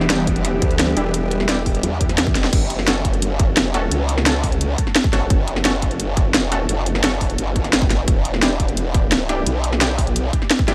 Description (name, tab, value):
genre	dark technical drum and bass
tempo	173 BPM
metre	4/4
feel	straight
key	F# phrygian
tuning	A4 = 440 Hz
part	swarming drone	sustained chords	0.0-2.5 s	E3 to F#5	-29 LUFS	equal	built-in reverb, sidechain pumping
part	orchestra-hit-like synth stab	stabs	0.0-10.7 s	C#4 to A4	-30 LUFS	equal	built-in reverb, cassette tape, analog delay
part	growl bass	bass	0.0-10.7 s	E1 to E2	-24 LUFS	equal	chorus, tube saturation
part	drum and bass drum kit	drums	0.0-10.7 s	crash cymbal, hi-hat, snare drum	-23 LUFS	equal	small room ambience
part	ethereal airy pad	texture	0.0-2.5 s	G3 to E5	-32 LUFS	equal	none
part	electronic kick drum	drums	0.3-10.7 s	none	-22 LUFS	equal	small room ambience
part	formant-sweep wobble bass	bass	0.6-1.8 s	E1 to D2	-24 LUFS	equal	chorus
room	moderate huge ambient reverb, RT60 8.3 s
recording	dreamy mix soaked in reverb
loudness	-19 LUFS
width	mono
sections	0.0-2.5 A section; 2.5-10.7 A section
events	drop 0.0-2.5, 2.5-10.7; drum fill 2.4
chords	0.0 Em7; 2.5 F#m; 8.1 Em7